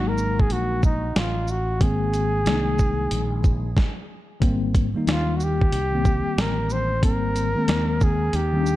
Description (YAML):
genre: hip hop, jazz-hop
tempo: 92 BPM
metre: 4/4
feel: swing 64% on 16ths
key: Ab major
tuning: A4 = 440 Hz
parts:
  - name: breathy flugelhorn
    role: melody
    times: 0.0-8.8 s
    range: Eb4 to C5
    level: -26 LUFS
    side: equal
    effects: analog delay
  - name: mellow tine electric piano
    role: accompaniment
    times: 0.0-8.8 s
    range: Eb3 to Eb4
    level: -26 LUFS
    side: left 3 dB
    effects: medium stereo tremolo
  - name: fretless electric bass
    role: bass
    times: 0.0-8.8 s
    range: Ab1 to Eb2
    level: -26 LUFS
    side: equal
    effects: none
  - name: dusty soul sampler-style drum kit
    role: drums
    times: 0.2-8.8 s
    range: hi-hat, kick drum, shaker, snare drum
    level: -22 LUFS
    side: equal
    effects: none
room: digital ambience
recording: dark, warm production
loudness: -20 LUFS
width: side -15 dB against mid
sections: 0.0-4.4 A section; 4.4-8.8 B section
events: stop 3.8-4.4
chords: 0.0 Gbadd9; 1.8 Abadd9; 4.4 Abmaj9